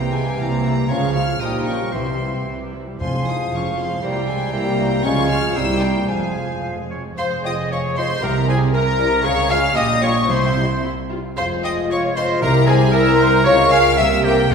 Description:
quick classical-period movement for symphony orchestra; 115 BPM; 2/4; rubato; F minor; A4 = 440 Hz
warm studio violin section; melody; 0.0-14.5 s; F5 to F6; -26 LUFS; left 3 dB
clear oboe; second line; 0.0-14.5 s; F4 to F5; -26 LUFS; right 1 dB
clear studio violin section; second line; 0.0-14.5 s; F4 to Ab5; -26 LUFS; left 2 dB
warm clarinet; second line; 0.0-14.5 s; F4 to F5; -27 LUFS; left 2 dB
wooden flute; second line; 0.0-14.5 s; Ab4 to Bb5; -28 LUFS; left 2 dB
warm bassoon; accompaniment; 0.0-6.9 s; E3 to Ab3; -27 LUFS; right 2 dB
warm studio viola section; accompaniment; 0.0-14.5 s; E3 to E5; -27 LUFS; right 2 dB
dark French horn section; sustained chords; 0.0-14.5 s; F3 to G4; -25 LUFS; left 4 dB
dark studio double bass section; bass; 0.0-14.5 s; F1 to Db2; -26 LUFS; right 4 dB
warm studio cello section; bass; 0.0-14.5 s; C2 to Db3; -25 LUFS; right 3 dB
timpani; percussion; 1.9-3.7, 8.2-14.5 s; F2 to C3; -24 LUFS; right 1 dB
mellow trumpet section; stabs; 7.2-14.5 s; F4 to F5; -23 LUFS; equal
wet scoring stage reverb, RT60 1.6 s; heard from further back in the room; -16 LUFS; side -6 dB against mid
0.0-7.2 A section; 7.2-14.5 A section
0.0 C7; 0.9 Db; 1.4 Gm7b5/Bb; 1.9 C; 3.0 Fm; 4.0 C7; 5.0 Db; 5.6 C7; 6.1 Fm; 8.2 C7; 9.3 Db; 9.8 Gm7b5/Bb; 10.3 C; 11.4 Fm; 12.4 C7; 13.5 Db; 14.0 C7

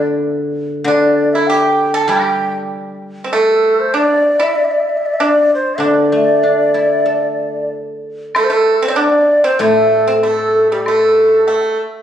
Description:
chinese traditional, Chinese chamber ensemble; 96 BPM; 4/4; rubato; D shang mode; A4 = 439 Hz
xiao; melody; 0.0-11.8 s; G4 to A5; -14 LUFS; equal
pipa; second line; 0.0-11.8 s; G3 to A4; -19 LUFS; right 3 dB
guzheng; accompaniment; 0.0-11.5 s; A2 to A4; -17 LUFS; left 1 dB
woodblock; percussion; 8.3-11.6 s; -24 LUFS; equal
moderate scoring stage reverb, RT60 1.7 s; recorded on a phone in the room, club reverb, compression; -12 LUFS; side -10 dB against mid
0.0-8.4 A section; 8.4-12.0 B section

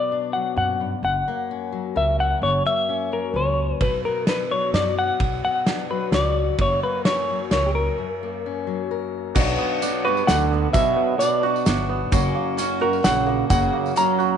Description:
indie folk with a building arrangement; 130 BPM; 3/4; straight; B harmonic minor; A4 = 445 Hz
semi-hollow electric guitar; melody; 0.0-14.4 s; G4 to A#5; -22 LUFS; left 2 dB; harmonic tremolo, tape echo
fingerpicked steel-string acoustic guitar; accompaniment; 0.0-9.4 s; F#2 to A#4; -29 LUFS; left 11 dB
upright bass; bass; 0.6-13.7 s; F#1 to F#2; -25 LUFS; right 1 dB
loose indie drum kit; drums; 3.8-14.1 s; crash cymbal, hi-hat, kick drum, ride cymbal, snare drum; -25 LUFS; right 1 dB
kora; arpeggios; 9.3-14.4 s; F#3 to F#4; -26 LUFS; right 11 dB
dark concert grand piano; accompaniment; 9.4-14.4 s; F#1 to E5; -33 LUFS; left 10 dB
picked steel-string acoustic guitar; accompaniment; 9.4-14.4 s; F#2 to F#4; -29 LUFS; left 10 dB
tambourine; percussion; 9.4-14.3 s; -36 LUFS; right 14 dB
clear trombone; second line; 10.1-14.4 s; F#2 to F#3; -25 LUFS; right 12 dB
moderate echo chamber reverb, RT60 1.4 s, small room ambience; 1960s-style stereo with parts hard left and right, nothing above 10.7 kHz; -19 LUFS; side -8 dB against mid
0.0-9.4 A section; 9.4-14.4 B section
break 8.0-9.4
0.0 Bm; 1.0 F#; 3.8 Bm; 6.6 F#; 9.4 Bm; 12.1 F#

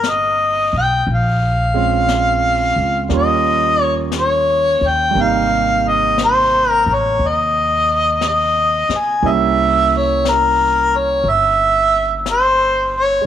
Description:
jazz ballad; 59 BPM; 4/4; swing 67% on 8ths; A4 = 440 Hz
mellow harmonica; melody; 0.0-13.3 s; Bb4 to Ab5; -14 LUFS; left 1 dB
warm baby grand piano; accompaniment; 0.0-13.3 s; C3 to G4; -23 LUFS; right 12 dB
upright bass; bass; 0.0-13.2 s; G1 to Eb2; -22 LUFS; equal
jazz brush drum kit; drums; 0.0-13.3 s; brushed snare drum, hi-hat, snare drum; -30 LUFS; left 9 dB
moderate spring reverb, RT60 2.7 s; 1960s-style stereo with parts hard left and right; -13 LUFS; side -10 dB against mid
0.0-13.3 A section
0.0 Cm7; 1.1 Bbm7; 3.1 Eb9; 5.1 Abmaj9; 9.2 C7b9

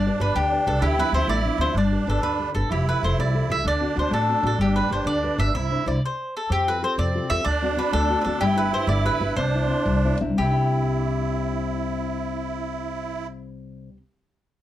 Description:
italian folk, Italian serenade; 126 BPM (dotted quarters); 6/8; straight; C major; A4 = 441 Hz
mandolin; melody; 0.0-14.0 s; G4 to E5; -25 LUFS; equal
musette accordion; second line; 0.0-13.3 s; C4 to E4; -28 LUFS; right 5 dB
nylon-string guitar; accompaniment; 0.0-14.0 s; C3 to E5; -27 LUFS; left 3 dB
upright bass; bass; 0.0-14.0 s; F1 to F2; -25 LUFS; equal
moderate studio ambience, RT60 0.5 s; -20 LUFS; side -12 dB against mid
0.0-6.5 A section; 6.5-10.4 B section; 10.4-12.5 C section
stop 6.0-6.5; slowing down 8.4-10.4; nylon-string guitar fill 9.9-10.4
0.0 G; 0.8 Dm7; 1.7 G; 2.7 Fadd9; 3.7 D7; 4.6 G; 5.5 Cadd9; 6.5 Fadd9; 7.5 D7; 8.4 G; 9.4 Cadd9

